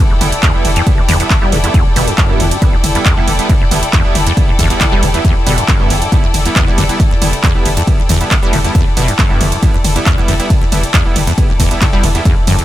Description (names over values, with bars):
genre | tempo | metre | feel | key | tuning
driving peak-time techno | 137 BPM | 4/4 | straight | E minor | A4 = 440 Hz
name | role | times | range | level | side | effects
acid bass, saw | riff | 0.0-12.6 s | E2 to G3 | -18 LUFS | equal | wide subtle chorus, sidechain pumping, ping-pong delay
impact | sound effects | 0.0-0.9 s | none | barely audible | none | none
rich studio string section | texture | 0.0-12.6 s | E4 to G5 | -20 LUFS | left 3 dB | sidechain pumping
saturated sub bass | bass | 0.1-12.6 s | E1 | -18 LUFS | equal | sidechain pumping, low-pass filter
sync-sweep polysynth | stabs | 0.2-12.2 s | G3 to E4 | -21 LUFS | right 4 dB | chorus, sidechain pumping, ping-pong delay
techno drum kit | drums | 0.2-12.6 s | handclaps, hi-hat, ride cymbal, toms | -17 LUFS | equal | sidechain pumping on hats, sidechain pumping on toms, sidechain pumping on cymbals
electronic kick drum | drums | 0.4-12.3 s | none | -13 LUFS | equal | none
room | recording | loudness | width
digital ambience | none | -10 LUFS | side -14 dB against mid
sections
0.0-12.6 A section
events
impact 0.0-0.9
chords
0.0 Em